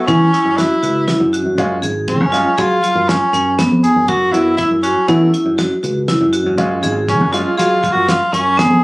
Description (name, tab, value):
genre	progressive instrumental, band music in an uneven meter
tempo	120 BPM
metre	5/4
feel	straight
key	unclear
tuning	A4 = 440 Hz
part	bright tenor saxophone	melody	0.0-8.8 s	A3 to G#4	-15 LUFS	equal	plate reverb
part	bright concert grand piano	accompaniment	0.0-8.0 s	F#3 to E#4	-20 LUFS	equal	plate reverb
part	vibraphone with hard mallets	arpeggios	0.1-8.8 s	B3 to G#4	-17 LUFS	equal	none
part	fingered electric bass	bass	0.1-8.8 s	G#1 to F#3	-18 LUFS	equal	none
part	damped 70s drum kit	drums	0.1-8.7 s	hi-hat, kick drum, snare drum	-22 LUFS	equal	none
room	light reverb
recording	recorded on a phone in the room, studio ambience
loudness	-12 LUFS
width	side -24 dB against mid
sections	0.0-8.8 A section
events	tenor saxophone solo 0.0-8.8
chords	0.0 F#7(no3); 1.6 C#7; 4.1 F#5; 6.6 C#